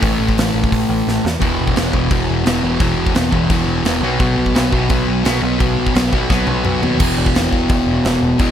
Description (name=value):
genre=punk rock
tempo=172 BPM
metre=4/4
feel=straight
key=unclear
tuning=A4 = 441 Hz
part: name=sludgy distorted guitar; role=riff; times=0.0-8.5 s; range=E2 to B3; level=-16 LUFS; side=left 1 dB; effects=overdrive
part: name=growling picked electric bass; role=bass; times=0.0-8.5 s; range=E1 to E2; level=-22 LUFS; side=equal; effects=overdrive
part: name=big rock drum kit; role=drums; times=0.0-8.5 s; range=crash cymbal, hi-hat, kick drum, snare drum, toms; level=-19 LUFS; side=equal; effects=none
room=light reverb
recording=none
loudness=-14 LUFS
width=side -9 dB against mid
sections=0.0-1.4 A section; 1.4-7.0 B section; 7.0-8.5 C section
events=drum fill 1.1-1.4, 6.3-7.0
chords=0.0 A5; 1.4 E5; 4.0 B5; 7.0 E5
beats=| 0.03 0.37 0.72 1.07 | 1.42 1.76 2.11 2.46 | 2.81 3.16 3.50 3.85 | 4.20 4.55 4.90 5.25 | 5.60 5.95 6.30 6.65 | 7.00 7.35 7.70 8.05 | 8.40